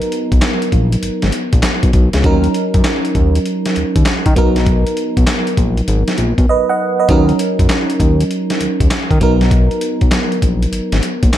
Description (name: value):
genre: R&B, new jack swing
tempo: 99 BPM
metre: 4/4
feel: swing 66% on 16ths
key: unclear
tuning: A4 = 441 Hz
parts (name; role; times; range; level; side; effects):
- FM electric piano; accompaniment; 0.0-11.4 s; F#3 to F#5; -17 LUFS; right 2 dB; chorus
- boom bap sampler-style drum kit; drums; 0.0-11.4 s; handclaps, hi-hat, kick drum, snare drum; -15 LUFS; equal; none
- fat analog bass; bass; 0.3-11.3 s; Ab1 to Eb3; -15 LUFS; equal; none
room: light reverb, digital ambience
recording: dark, warm production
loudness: -12 LUFS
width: side -12 dB against mid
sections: 0.0-11.4 A section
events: silent gap 6.5-7.1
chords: 0.0 Bmaj7; 2.2 Ebm7; 4.4 Bmaj7; 7.1 Ebm7; 9.2 Bmaj7